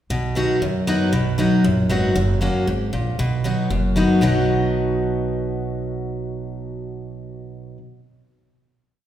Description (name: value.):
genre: bluegrass.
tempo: 233 BPM.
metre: 4/4.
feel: straight.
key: B major.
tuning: A4 = 443 Hz.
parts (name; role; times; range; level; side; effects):
picked steel-string acoustic guitar; accompaniment; 0.1-7.8 s; F#2 to F#4; -20 LUFS; equal; none.
upright bass; bass; 0.1-7.7 s; F#1 to F#2; -26 LUFS; right 1 dB; none.
room: wet recital hall reverb, RT60 1.7 s.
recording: recorded in a church or concert hall.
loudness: -18 LUFS.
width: side -11 dB against mid.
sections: 0.1-4.2 A section; 4.2-6.3 final chord.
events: none.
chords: 0.1 B; 2.2 F#; 3.2 B.